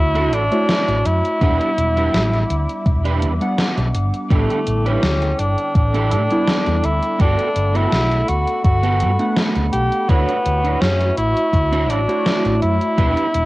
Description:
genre	vaporwave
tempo	83 BPM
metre	4/4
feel	straight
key	unclear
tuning	A4 = 437 Hz
part	mellow tenor saxophone	melody	0.0-13.5 s	A3 to G4	-20 LUFS	equal	cassette tape, tape echo
part	warbly lo-fi synth keys	accompaniment	0.0-13.5 s	D3 to F#5	-25 LUFS	equal	wide subtle chorus, cassette tape
part	warbly tape-like pad	sustained chords	0.0-13.5 s	G3 to D6	-29 LUFS	left 1 dB	chorus, built-in reverb, cassette tape
part	mellow fretless electric bass	bass	0.0-13.5 s	E1 to A2	-20 LUFS	equal	analog chorus
part	electric guitar at the edge of break-up	riff	0.1-13.3 s	B3 to C#5	-25 LUFS	right 5 dB	ensemble chorus, vintage 12-bit sampler grit, cassette tape, analog delay
part	gated 80s digital drum machine	drums	0.2-13.5 s	hi-hat, snare drum	-22 LUFS	equal	gated reverb, gated reverb snare, cassette tape
part	electronic kick drum	drums	1.4-13.1 s	none	-16 LUFS	equal	cassette tape
room	light reverb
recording	home recording on cassette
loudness	-15 LUFS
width	side -19 dB against mid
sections	0.0-13.5 A section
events	none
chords	0.0 Dmaj9; 1.4 Em7; 4.3 A7sus4; 7.2 Gmaj9; 10.1 Dmaj9

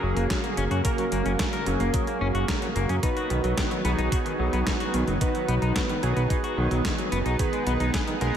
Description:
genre	synthwave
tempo	110 BPM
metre	4/4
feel	straight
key	unclear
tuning	A4 = 440 Hz
part	lush unison pad	sustained chords	0.0-8.4 s	C#3 to B3	-30 LUFS	right 1 dB	chorus, sidechain pumping
part	semi-hollow electric guitar	arpeggios	0.0-8.3 s	D#3 to A#4	-31 LUFS	left 4 dB	ping-pong delay
part	chorused polysynth	stabs	0.0-8.4 s	A#3 to B4	-30 LUFS	right 3 dB	ping-pong delay
part	fat analog bass	bass	0.0-8.3 s	F#1 to F#2	-26 LUFS	equal	sidechain pumping
part	detuned 8-bit digital drum machine	drums	0.2-8.4 s	hi-hat, snare drum	-31 LUFS	equal	small room ambience, gated reverb
part	electronic kick drum	drums	0.3-8.0 s	none	-29 LUFS	equal	small room ambience
room	light reverb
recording	none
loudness	-23 LUFS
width	side -9 dB against mid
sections	0.0-8.4 A section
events	none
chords	0.0 F#; 3.0 B; 7.4 G#m

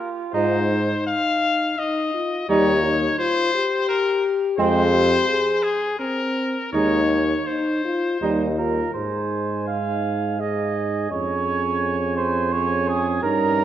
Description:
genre	classical, brass quintet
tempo	84 BPM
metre	3/4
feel	straight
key	Ab major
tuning	A4 = 440 Hz
part	bright trumpet	melody	0.0-13.6 s	Ab4 to Bb5	-25 LUFS	left 3 dB	none
part	clear flugelhorn	second line	0.0-13.6 s	C4 to F5	-25 LUFS	right 6 dB	none
part	mellow French horn	accompaniment	0.3-13.6 s	C4 to Ab4	-24 LUFS	left 2 dB	none
part	mellow trombone	accompaniment	0.3-13.6 s	G3 to Eb4	-28 LUFS	right 3 dB	none
part	warm bass trombone	bass	0.3-13.6 s	Eb2 to Ab2	-25 LUFS	right 1 dB	none
room	wet scoring stage reverb, RT60 1.5 s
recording	worn, warbling old tape, cassette tape, warbly pitch drift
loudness	-19 LUFS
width	side -11 dB against mid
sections	0.0-9.0 A section; 9.0-13.6 B section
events	none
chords	0.3 Ab; 2.5 Eb7; 4.6 Fm; 6.7 Ab/Eb; 8.2 Eb; 9.0 Ab; 11.1 Db/F

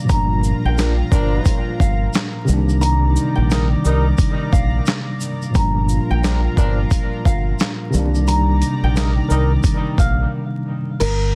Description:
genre	hip hop, boom-bap hip-hop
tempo	88 BPM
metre	4/4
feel	swing 61% on 16ths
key	unclear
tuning	A4 = 440 Hz
part	tine electric piano	accompaniment	0.0-11.0 s	Bb2 to D4	-24 LUFS	equal	cassette tape
part	lush unison pad	sustained chords	0.0-11.0 s	Eb3 to Bb5	-32 LUFS	equal	chorus
part	nylon-string guitar	melody	0.1-11.3 s	Bb4 to Bb5	-29 LUFS	equal	tape echo
part	deep dub fingered electric bass	bass	0.1-11.3 s	G1 to C2	-20 LUFS	equal	none
part	dusty soul sampler-style drum kit	drums	0.1-11.2 s	crash cymbal, handclaps, hi-hat, kick drum, shaker, snare drum	-21 LUFS	equal	none
part	tube shaker	percussion	0.1-10.2 s	none	-41 LUFS	equal	none
part	mellow horn section	stabs	0.8-9.5 s	F3 to Bb4	-30 LUFS	equal	tape echo
room	little or no reverb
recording	dense, heavily limited modern master, vinyl crackle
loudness	-18 LUFS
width	mono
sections	0.0-11.0 A section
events	break 10.3-11.0; kick muted 11.0-11.3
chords	0.1 Gm7; 2.5 Cm9; 5.6 Gm7; 7.9 Cm9

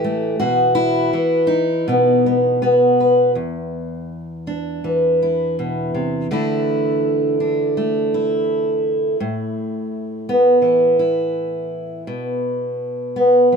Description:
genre	folk, solo fingerstyle acoustic guitar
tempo	82 BPM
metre	4/4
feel	rubato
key	unclear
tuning	A4 = 440 Hz
part	fingerpicked steel-string acoustic guitar	solo	0.0-13.6 s	E2 to B4	-16 LUFS	equal	none
room	light reverb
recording	close, detailed microphones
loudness	-16 LUFS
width	side -5 dB against mid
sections	0.0-3.3 A section; 3.3-13.6 B section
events	none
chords	0.4 Bsus4; 1.9 B; 3.3 E5; 6.3 Dsus2; 9.2 Asus2; 12.1 N.C.

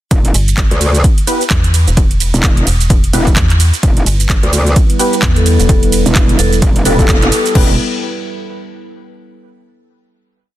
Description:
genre	bass house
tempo	129 BPM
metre	4/4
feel	swing 59% on 16ths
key	E minor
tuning	A4 = 438 Hz
part	metallic wobble bass	bass	0.1-7.8 s	E1 to D2	-14 LUFS	equal	chorus, overdrive, sidechain pumping
part	electronic kick drum	drums	0.1-7.7 s	none	-12 LUFS	equal	none
part	house drum kit	drums	0.1-7.7 s	crash cymbal, handclaps, hi-hat, ride cymbal, shaker	-18 LUFS	right 2 dB	none
part	metallic FM bass	bass	0.3-6.6 s	E1 to E2	-12 LUFS	equal	overdrive, sidechain pumping
part	percussive organ stab	stabs	1.3-7.7 s	B3 to B4	-20 LUFS	left 1 dB	ensemble chorus, sidechain pumping, ping-pong delay
part	dark analog pad	sustained chords	3.8-7.8 s	G3 to B4	-20 LUFS	right 1 dB	chorus, sidechain pumping
part	vibraphone with medium hard mallets	melody	5.4-7.5 s	A4	-20 LUFS	left 2 dB	ping-pong delay
room	digital ambience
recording	dense, heavily limited modern master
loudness	-9 LUFS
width	side -14 dB against mid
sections	0.1-7.6 drop; 7.6-9.4 final chord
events	drop 0.1-7.6; band accent 7.1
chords	0.1 Em

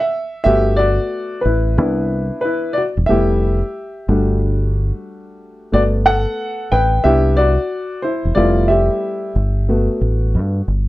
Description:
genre	hip hop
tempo	91 BPM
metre	4/4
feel	swing 62% on 16ths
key	G major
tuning	A4 = 440 Hz
part	dark grand piano	accompaniment	0.0-10.6 s	G3 to G5	-17 LUFS	left 1 dB	none
part	deep dub fingered electric bass	bass	0.5-10.9 s	E1 to G2	-16 LUFS	equal	none
room	moderate studio reverb, RT60 0.5 s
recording	dark, warm production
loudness	-15 LUFS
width	side -17 dB against mid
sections	0.5-10.9 A section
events	grand piano solo 0.5-10.9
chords	0.5 Gmaj9; 1.8 Cmaj7; 3.1 Fmaj9#11; 4.1 Dadd11/G; 5.7 Gmaj9; 7.1 Cmaj7; 8.4 Fmaj9#11; 9.4 Gmaj9

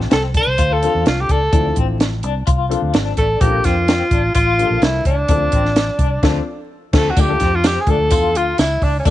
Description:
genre	uptempo 1960s-style soul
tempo	128 BPM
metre	4/4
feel	straight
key	D minor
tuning	A4 = 438 Hz
part	warm baby grand piano	accompaniment	0.0-9.1 s	E3 to A4	-25 LUFS	left 8 dB	none
part	vintage muted fingered electric bass	bass	0.0-9.1 s	G#1 to F2	-20 LUFS	equal	none
part	compact cocktail drum kit	drums	0.0-9.1 s	crash cymbal, hi-hat, kick drum, snare drum	-18 LUFS	right 1 dB	none
part	warm tenor saxophone	melody	0.1-9.1 s	C#4 to C5	-18 LUFS	equal	none
part	electric guitar through a small old amp	riff	0.1-9.1 s	Bb3 to F4	-25 LUFS	left 9 dB	tremolo
part	tambourine	percussion	7.2-9.1 s	none	-31 LUFS	right 13 dB	none
room	studio reverb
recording	1960s-style stereo with parts hard left and right, vinyl crackle, nothing above 10.6 kHz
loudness	-14 LUFS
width	side -14 dB against mid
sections	0.0-7.2 A section; 7.2-9.1 B section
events	band accent 6.2-7.2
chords	0.0 Dm7; 3.4 Bbmaj7; 5.3 Dm7; 7.2 Dm

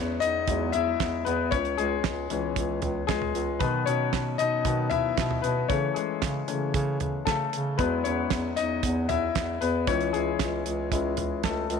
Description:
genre	piano-driven pop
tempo	115 BPM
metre	4/4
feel	straight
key	E major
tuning	A4 = 444 Hz
part	clear baby grand piano	accompaniment	0.0-11.8 s	D#3 to E5	-27 LUFS	left 10 dB	none
part	mellow bass clarinet	bass	0.0-11.8 s	C#2 to C#3	-30 LUFS	right 2 dB	none
part	damped 70s drum kit	drums	0.2-11.8 s	hi-hat, kick drum, snare drum, toms	-31 LUFS	right 6 dB	none
room	light reverb, small room ambience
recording	1960s-style stereo with parts hard left and right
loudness	-24 LUFS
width	side -6 dB against mid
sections	0.0-11.8 A section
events	grand piano solo 0.0-11.8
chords	0.0 Eadd9; 1.5 C#m; 3.6 B; 5.7 A/C#; 7.8 Eadd9; 9.9 C#m

